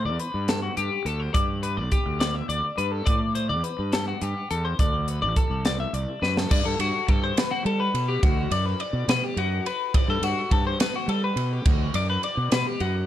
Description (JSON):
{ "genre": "math rock and midwest emo", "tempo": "70 BPM (dotted quarters)", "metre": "6/8", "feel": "straight", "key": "G major", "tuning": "A4 = 444 Hz", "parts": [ { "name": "twelve-string electric guitar", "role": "arpeggios", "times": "0.0-13.1 s", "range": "F#4 to E5", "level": "-27 LUFS", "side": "left 4 dB", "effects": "lush chorus, tape echo" }, { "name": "fuzz fingered electric bass", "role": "bass", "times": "0.0-13.0 s", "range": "A1 to G3", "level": "-27 LUFS", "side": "right 1 dB", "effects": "overdrive" }, { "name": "crisp fusion drum kit", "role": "drums", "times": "0.2-12.9 s", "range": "crash cymbal, hi-hat, kick drum, ride cymbal, snare drum", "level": "-25 LUFS", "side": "right 1 dB", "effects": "none" } ], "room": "light reverb", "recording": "dark, warm production", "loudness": "-22 LUFS", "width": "side -12 dB against mid", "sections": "0.0-6.5 A section; 6.5-13.1 B section", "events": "drum fill 6.2", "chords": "0.0 A9sus4; 1.3 Em7 (rootless); 3.1 Am11; 4.8 D13; 6.5 Gmaj9" }